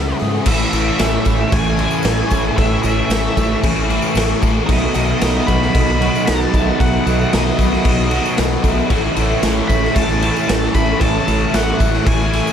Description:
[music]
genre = rock, shoegaze and dream pop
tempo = 114 BPM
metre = 4/4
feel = straight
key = A lydian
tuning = A4 = 440 Hz
[part]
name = octave-fuzz lead guitar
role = melody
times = 0.0-12.5 s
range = D#5 to B5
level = -25 LUFS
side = left 1 dB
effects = distortion, analog delay
[part]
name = electric guitar through a small old amp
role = arpeggios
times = 0.0-12.5 s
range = E3 to G#4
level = -26 LUFS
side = right 2 dB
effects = analog chorus, analog delay
[part]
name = overdriven electric guitar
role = riff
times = 0.0-12.5 s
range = A2 to A4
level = -23 LUFS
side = right 9 dB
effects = reverse reverb
[part]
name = thick fuzz guitar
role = riff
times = 0.0-12.5 s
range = A2 to C#4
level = -23 LUFS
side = left 10 dB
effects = distortion, ensemble chorus
[part]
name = growling fingered electric bass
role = bass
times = 0.0-12.4 s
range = A1 to G#2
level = -21 LUFS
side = equal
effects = overdrive
[part]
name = raw garage drum kit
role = drums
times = 0.2-12.5 s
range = crash cymbal, hi-hat, kick drum, snare drum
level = -18 LUFS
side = equal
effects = none
[part]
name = glassy FM pad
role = sustained chords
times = 0.8-12.5 s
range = A4 to C#6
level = -27 LUFS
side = equal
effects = ensemble chorus, built-in reverb
[part]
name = crunchy overdriven guitar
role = riff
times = 0.5-12.5 s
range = A2 to B3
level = -24 LUFS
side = equal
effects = phaser
[part]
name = tambourine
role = percussion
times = 0.7-12.5 s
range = none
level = -37 LUFS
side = right 16 dB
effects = none
[sound]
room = light reverb, small room ambience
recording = none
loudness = -14 LUFS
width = side -8 dB against mid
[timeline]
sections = 0.5-12.5 A section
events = none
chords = 0.5 Amaj7; 4.7 B7; 8.9 A

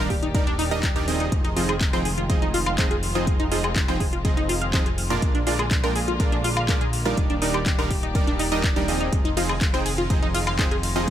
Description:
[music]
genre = progressive house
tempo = 123 BPM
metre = 4/4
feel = straight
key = F dorian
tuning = A4 = 441 Hz
[part]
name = warm studio string section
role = sustained chords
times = 0.0-11.1 s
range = D3 to D5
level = -32 LUFS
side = left 2 dB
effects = sidechain pumping
[part]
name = tight sequenced synth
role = arpeggios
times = 0.0-11.0 s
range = D4 to F5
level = -28 LUFS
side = equal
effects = chorus, cassette tape, sidechain pumping, digital delay
[part]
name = supersaw stab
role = stabs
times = 0.0-11.1 s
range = Bb2 to G5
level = -27 LUFS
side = right 3 dB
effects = sidechain pumping, digital delay
[part]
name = fat analog bass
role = bass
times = 0.0-11.1 s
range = Eb1 to Bb1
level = -29 LUFS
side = equal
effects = sidechain pumping
[part]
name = electronic kick drum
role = drums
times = 0.1-11.1 s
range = none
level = -23 LUFS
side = equal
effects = none
[part]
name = house drum kit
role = drums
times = 0.1-11.1 s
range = handclaps, hi-hat, ride cymbal, woodblock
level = -29 LUFS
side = left 1 dB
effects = overdrive, sidechain pumping on hats, sidechain pumping on perc, sidechain pumping on cymbals
[sound]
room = light reverb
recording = none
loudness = -20 LUFS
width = side -11 dB against mid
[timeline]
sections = 0.0-11.1 A section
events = none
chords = 0.0 Ebmaj7; 1.3 Fm7; 5.2 Bb7; 7.2 Ebmaj7; 9.1 Fm7

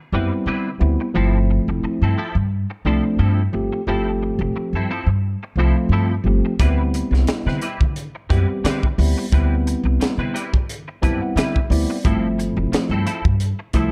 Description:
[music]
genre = electric jazz fusion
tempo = 88 BPM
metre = 4/4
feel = swing 55% on 16ths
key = unclear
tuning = A4 = 438 Hz
[part]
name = tine electric piano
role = accompaniment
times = 0.1-13.9 s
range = F3 to A5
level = -25 LUFS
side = equal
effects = lush chorus
[part]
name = clean electric guitar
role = stabs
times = 0.1-13.9 s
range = F3 to B4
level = -32 LUFS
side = equal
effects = ensemble chorus
[part]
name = upright bass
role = bass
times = 0.1-13.9 s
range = F1 to D3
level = -22 LUFS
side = equal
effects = none
[part]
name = crisp fusion drum kit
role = drums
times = 6.6-13.9 s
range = hi-hat, kick drum, snare drum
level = -24 LUFS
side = equal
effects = none
[sound]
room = light reverb, small room reverb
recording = dark, warm production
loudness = -20 LUFS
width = mono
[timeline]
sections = 0.0-13.9 A section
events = tine electric piano fill 10.7-12.0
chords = 0.0 D13sus4; 1.1 G13sus4; 6.6 D13sus4; 12.0 G13sus4

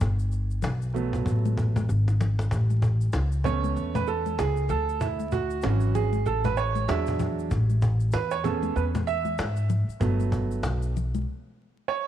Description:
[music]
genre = hip hop, jazz-hop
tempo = 96 BPM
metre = 4/4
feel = swing 59% on 16ths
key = A major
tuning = A4 = 439 Hz
[part]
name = upright bass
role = bass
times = 0.0-11.2 s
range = G1 to G#2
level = -25 LUFS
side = equal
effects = none
[part]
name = cajon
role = drums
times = 0.0-11.0 s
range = none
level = -31 LUFS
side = left 1 dB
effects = none
[part]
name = egg shaker and congas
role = percussion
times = 0.0-11.3 s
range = none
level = -36 LUFS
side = left 8 dB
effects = none
[part]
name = clear upright piano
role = accompaniment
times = 0.9-12.1 s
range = E3 to E5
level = -28 LUFS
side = right 8 dB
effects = none
[sound]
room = light reverb, small room ambience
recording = 1960s-style stereo with parts hard left and right, vinyl crackle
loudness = -23 LUFS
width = side -11 dB against mid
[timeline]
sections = 0.0-2.5 A section; 2.5-12.1 B section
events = upright piano solo 0.0-2.5, 2.5-12.1; drum fill 1.9-2.5; break 11.3-12.1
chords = 0.0 Gmaj7; 2.5 Aadd9; 4.7 Dmaj7; 6.9 E7; 7.5 Amaj9; 10.0 Gmaj7

